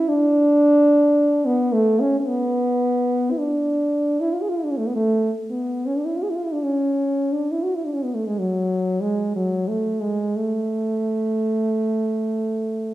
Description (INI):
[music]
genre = classical, free, expressive piece for unaccompanied French horn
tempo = 42-57 BPM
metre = 3/4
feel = rubato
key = A major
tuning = A4 = 439 Hz
[part]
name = dark French horn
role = solo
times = 0.0-12.9 s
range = F#3 to G#4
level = -19 LUFS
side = equal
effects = none
[sound]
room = wet recital hall reverb, RT60 1.2 s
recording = recorded in a church or concert hall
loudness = -19 LUFS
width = side -15 dB against mid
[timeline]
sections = 0.0-12.9 A section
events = none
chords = none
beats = | 0.09 1.18 2.28 | 3.37 4.44 5.51 | 6.63 7.80 9.01 | 10.36 11.75